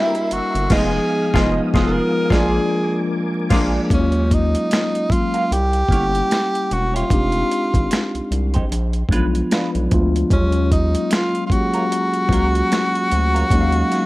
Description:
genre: R&B, neo-soul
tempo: 75 BPM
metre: 4/4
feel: swing 58% on 16ths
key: Eb minor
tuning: A4 = 440 Hz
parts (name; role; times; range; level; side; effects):
- warm tenor saxophone; melody; 0.0-14.1 s; Db4 to Bb4; -21 LUFS; equal; none
- clean electric guitar; second line; 0.0-13.4 s; Gb3 to F5; -28 LUFS; right 3 dB; wah, spring reverb
- mellow tine electric piano; accompaniment; 0.0-14.1 s; F3 to Gb5; -21 LUFS; left 1 dB; slow stereo tremolo
- tonewheel organ; sustained chords; 0.0-3.9 s; Ab4 to Eb6; -32 LUFS; equal; chorus vibrato, fast rotary speaker
- warm horn section; stabs; 0.0-3.7 s; Ab3 to G4; -28 LUFS; left 3 dB; none
- dusty soul sampler-style drum kit; drums; 0.1-14.1 s; crash cymbal, finger snaps, hi-hat, kick drum, snare drum; -20 LUFS; equal; overdrive
- round analog bass; bass; 0.3-13.8 s; E1 to Eb2; -20 LUFS; equal; none
room: moderate studio reverb, RT60 0.8 s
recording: vinyl crackle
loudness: -16 LUFS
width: side -19 dB against mid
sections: 0.0-3.9 A section; 3.9-14.1 B section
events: band accent 0.7-3.9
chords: 0.0 C7; 0.7 Fm7b5; 2.3 Bb7; 3.9 Ebm9; 5.5 C7b9; 7.1 Fm9; 8.7 Bb7b9; 10.3 Ebm9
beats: | 0.70 1.50 2.31 3.10 | 3.90 4.71 5.50 6.30 | 7.11 7.91 8.71 9.51 | 10.30 11.11 11.90 12.71 | 13.51

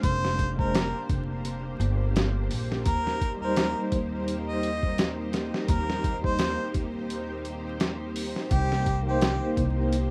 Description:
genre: trip hop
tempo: 85 BPM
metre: 4/4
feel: swing 57% on 16ths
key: unclear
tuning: A4 = 439 Hz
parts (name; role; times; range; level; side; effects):
- warm harmonica; melody; 0.0-9.5 s; G4 to Eb5; -35 LUFS; equal; vintage 12-bit sampler grit, tape echo
- tine electric piano; accompaniment; 0.0-10.1 s; G3 to C5; -33 LUFS; equal; tremolo
- string machine, cellos; sustained chords; 0.0-10.1 s; Bb3 to C5; -36 LUFS; equal; ensemble chorus
- upright bass; bass; 0.0-10.1 s; F1 to Eb2; -32 LUFS; equal; tube saturation
- trip hop sampler-style drum kit; drums; 0.0-10.1 s; hi-hat, kick drum, snare drum; -31 LUFS; equal; none
room: light reverb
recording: rough home demo mix, vinyl crackle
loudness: -27 LUFS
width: mono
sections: 0.0-10.1 A section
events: none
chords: 0.0 Bb9/F; 2.9 Eb6; 8.5 Cm7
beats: | 0.04 0.74 1.45 2.15 | 2.86 3.56 4.27 4.98 | 5.68 6.39 7.09 7.80 | 8.51 9.21 9.92

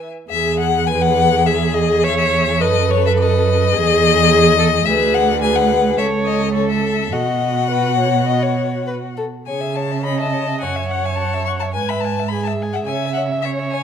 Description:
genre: quick classical-period movement for string quartet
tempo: 105 BPM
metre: 4/4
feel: rubato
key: E major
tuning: A4 = 440 Hz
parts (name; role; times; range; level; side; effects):
- rich violin; melody; 0.0-13.8 s; C#5 to C#6; -19 LUFS; left 11 dB; none
- dark violin; second line; 0.0-13.8 s; G#4 to G#5; -24 LUFS; left 4 dB; none
- warm viola; accompaniment; 0.0-13.8 s; F#4 to E5; -21 LUFS; right 2 dB; none
- warm cello; bass; 0.3-13.8 s; C#2 to C#3; -20 LUFS; right 5 dB; none
room: moderate recital hall reverb, RT60 1.4 s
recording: close, detailed microphones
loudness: -15 LUFS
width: side -8 dB against mid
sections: 0.3-13.8 A section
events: none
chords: 0.3 E; 2.6 B7/F#; 3.7 E; 4.9 E9/D; 6.0 A/C#; 7.1 B; 9.5 C#m; 10.6 F#5; 11.7 E/G#; 12.9 C#m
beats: | 0.30 0.88 1.46 2.03 | 2.60 3.17 3.73 4.30 | 4.86 5.42 5.97 6.54 | 7.12 7.70 8.29 8.87 | 9.47 10.05 10.62 11.19 | 11.75 12.31 12.88 13.44

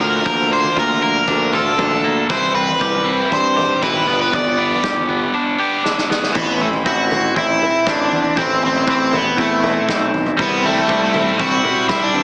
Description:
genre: indie rock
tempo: 119 BPM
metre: 4/4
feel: straight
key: unclear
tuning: A4 = 440 Hz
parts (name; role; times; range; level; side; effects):
- crunchy overdriven guitar; melody; 0.0-12.2 s; A3 to D5; -20 LUFS; equal; tape echo
- clean electric guitar; riff; 0.0-12.2 s; E3 to G4; -24 LUFS; equal; lush chorus
- scooped high-gain guitar; riff; 0.0-6.3, 10.4-12.2 s; E3 to G4; -25 LUFS; equal; distortion, subtle chorus, tape echo
- fuzz picked electric bass; bass; 0.0-12.2 s; G1 to G2; -24 LUFS; equal; overdrive
- unplugged drum kit; drums; 0.3-12.2 s; crash cymbal, kick drum, snare drum, toms; -27 LUFS; equal; none
room: light reverb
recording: heavily compressed radio sound, multiband compression, small speaker sound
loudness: -17 LUFS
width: mono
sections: 0.0-6.4 A section; 6.4-12.2 B section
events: drum fill 5.8-6.4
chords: 0.0 Bb/D; 2.3 C; 4.1 G; 6.4 Am; 10.4 C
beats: | 0.26 0.77 1.28 1.79 | 2.29 2.80 3.31 3.82 | 4.33 4.83 5.34 5.85 | 6.35 6.86 7.36 7.87 | 8.37 8.88 9.38 9.88 | 10.39 10.89 11.39 11.90

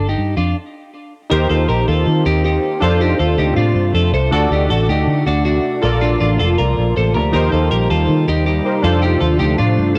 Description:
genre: indie pop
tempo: 159 BPM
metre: 4/4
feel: straight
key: unclear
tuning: A4 = 439 Hz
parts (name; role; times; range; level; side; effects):
- twelve-string electric guitar; arpeggios; 0.0-10.0 s; D4 to C5; -21 LUFS; equal; cassette tape, tape echo
- vintage muted fingered electric bass; bass; 0.0-9.9 s; F1 to Eb3; -19 LUFS; equal; none
- warm analog keys; accompaniment; 1.3-10.0 s; D4 to D5; -23 LUFS; equal; chorus, cassette tape
- warbly tape-like pad; sustained chords; 1.8-10.0 s; C3 to F#5; -28 LUFS; equal; none
room: light reverb, digital ambience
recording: home recording on cassette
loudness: -16 LUFS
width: mono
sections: 0.0-1.3 A section; 1.3-10.0 B section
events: stop 0.6-1.3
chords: 0.0 G5; 1.3 Eb6; 2.8 F6; 4.3 D; 5.8 Bbmaj7; 7.3 Eb6; 8.8 F6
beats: 0.18 0.55 0.93 | 1.31 1.69 2.06 2.44 | 2.81 3.19 3.57 3.94 | 4.32 4.70 5.07 5.45 | 5.83 6.20 6.58 6.96 | 7.33 7.71 8.08 8.46 | 8.84 9.21 9.59 9.97

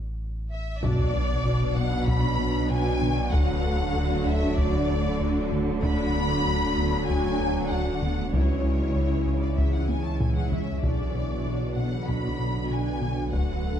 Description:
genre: cinematic, hybrid orchestral and electronic film score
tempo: 96 BPM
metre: 4/4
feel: straight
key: B dorian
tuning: A4 = 436 Hz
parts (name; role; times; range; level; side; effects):
- sub bass with octave; bass; 0.0-13.8 s; D1 to C#2; -32 LUFS; equal; none
- warm symphonic violin section; melody; 0.5-13.8 s; C#5 to B5; -35 LUFS; left 5 dB; none
- warm symphonic violin section; second line; 0.5-13.8 s; C#5 to B5; -35 LUFS; left 2 dB; none
- warm symphonic viola section; accompaniment; 0.8-13.8 s; E3 to A4; -35 LUFS; equal; none
- bright trombone section; sustained chords; 0.8-13.8 s; B2 to G#3; -35 LUFS; right 2 dB; none
- granular cloud pad; sustained chords; 2.2-13.8 s; E3 to D5; -34 LUFS; right 2 dB; built-in reverb
- warm French horn section; sustained chords; 0.8-13.8 s; A3 to F#4; -35 LUFS; left 6 dB; none
- round analog bass; riff; 0.8-13.8 s; C#2 to B2; -29 LUFS; left 1 dB; none
- rich symphonic cello section; bass; 0.8-13.8 s; B2 to D3; -33 LUFS; right 2 dB; none
- rich symphonic double bass section; bass; 0.8-13.8 s; B1 to D2; -33 LUFS; right 4 dB; none
- taiko ensemble; drums; 0.8-13.8 s; none; -30 LUFS; equal; none
- sub drop; sound effects; 0.9-3.3 s; none; -33 LUFS; equal; none
room: moderate scoring stage reverb, RT60 1.6 s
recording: dark, warm production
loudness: -23 LUFS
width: side -9 dB against mid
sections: 0.8-13.8 A section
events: break 0.0-0.8; drum fill 0.0-0.8, 9.9-10.8; impact 0.8-3.3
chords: 0.0 A5; 0.8 Bm; 3.3 D; 5.8 Bm/D; 8.3 C#m; 10.8 Bm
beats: 0.20 | 0.83 1.45 2.08 2.70 | 3.33 3.95 4.58 5.20 | 5.83 6.45 7.08 7.70 | 8.33 8.95 9.58 10.20 | 10.83 11.45 12.08 12.70 | 13.33

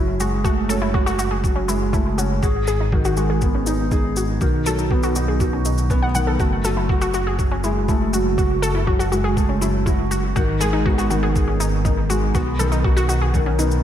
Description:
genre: piano and strings electronica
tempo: 121 BPM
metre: 4/4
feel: straight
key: F# dorian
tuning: A4 = 441 Hz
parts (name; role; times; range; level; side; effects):
- wide unison pluck; arpeggios; 0.0-13.6 s; C#4 to F#5; -25 LUFS; left 1 dB; sidechain pumping, analog delay
- felt-muted upright piano; riff; 0.0-13.8 s; D#3 to G#4; -22 LUFS; equal; lush chorus, analog delay
- dark detuned saw bass; bass; 0.0-13.8 s; F#1 to B1; -22 LUFS; equal; sidechain pumping
- shaker; drums; 0.2-13.8 s; none; -33 LUFS; left 2 dB; overdrive
- electronic kick drum; drums; 0.4-13.4 s; none; -21 LUFS; equal; none
room: moderate lush hall reverb, RT60 1.9 s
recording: dreamy mix soaked in reverb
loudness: -17 LUFS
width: side -10 dB against mid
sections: 0.0-13.8 A section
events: none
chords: 0.0 F#madd9; 2.4 G#m; 4.4 B; 6.4 F#madd9; 10.4 G#m; 12.4 B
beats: | 0.45 0.95 1.44 1.94 | 2.43 2.93 3.42 3.92 | 4.42 4.91 5.41 5.90 | 6.40 6.90 7.39 7.89 | 8.38 8.88 9.38 9.87 | 10.37 10.86 11.36 11.86 | 12.35 12.85 13.34

